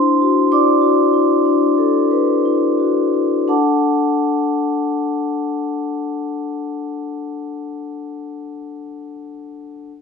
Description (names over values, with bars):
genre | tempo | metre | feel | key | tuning
classical, contemporary piece for solo vibraphone | 57-67 BPM | 4/4 | straight | D major | A4 = 440 Hz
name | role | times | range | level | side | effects
vibraphone with soft mallets | solo | 0.0-9.9 s | D4 to D6 | -16 LUFS | left 2 dB | none
room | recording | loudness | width
moderate large studio reverb, RT60 0.9 s | minimal, uncompressed stereo recording | -15 LUFS | side -5 dB against mid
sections
0.0-3.5 A section; 3.5-7.7 B section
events
slowing down 0.0-3.5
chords
0.0 C69/D; 3.5 D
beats
0.51 1.45 2.44 | 3.49 4.54 5.59 6.63